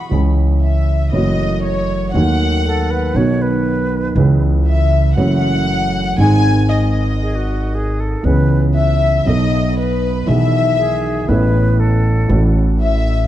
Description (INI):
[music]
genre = tango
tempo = 119 BPM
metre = 4/4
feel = rubato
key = C# minor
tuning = A4 = 440 Hz
[part]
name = breathy silver concert flute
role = second line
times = 0.0-12.7 s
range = F#4 to F#5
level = -24 LUFS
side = equal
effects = none
[part]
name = warm chamber violin section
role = second line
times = 0.0-13.3 s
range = B4 to B5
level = -20 LUFS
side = left 4 dB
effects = none
[part]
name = dark grand piano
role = accompaniment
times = 0.1-13.3 s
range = G#1 to A4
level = -17 LUFS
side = right 1 dB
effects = none
[part]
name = upright bass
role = bass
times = 0.1-13.3 s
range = F#1 to D#2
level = -16 LUFS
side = equal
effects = none
[sound]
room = moderate concert hall reverb, RT60 1.9 s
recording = dark, warm production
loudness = -13 LUFS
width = side -12 dB against mid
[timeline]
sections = 0.1-13.3 A section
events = violin section solo 0.1-13.3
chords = 0.1 C#m; 1.1 F#m7; 2.1 D#dim; 3.2 B; 4.2 C#m; 5.2 F#m7; 6.2 G#; 8.2 C#m7; 9.3 B7; 10.3 Emaj7/B; 11.3 Aadd9; 12.3 F#m7/A